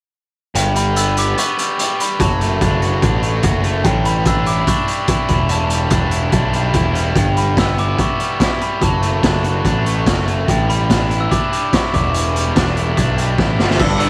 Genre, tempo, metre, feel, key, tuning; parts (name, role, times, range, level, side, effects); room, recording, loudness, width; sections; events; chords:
indie rock; 145 BPM; 4/4; straight; A4 = 441 Hz
overdriven electric guitar; riff; 0.5-14.1 s; E2 to G4; -23 LUFS; equal
fuzz picked electric bass; bass; 0.5-14.1 s; E1 to B1; -21 LUFS; equal; overdrive
glockenspiel with soft plastic mallets; melody; 0.6-14.1 s; G5 to E6; -25 LUFS; equal; tape echo
raw garage drum kit; drums; 0.6-14.1 s; crash cymbal, hi-hat, kick drum, snare drum; -21 LUFS; equal
crunchy overdriven guitar; riff; 13.8-14.1 s; G2 to D3; -21 LUFS; equal; ensemble chorus
small room ambience; -17 LUFS; mono
0.6-13.8 A section
drum fill 13.4-13.8
0.6 G; 2.2 D/F#; 3.9 A7sus4; 5.3 Em7; 7.2 G6; 8.8 D/F#; 10.5 A7sus4; 11.9 Em7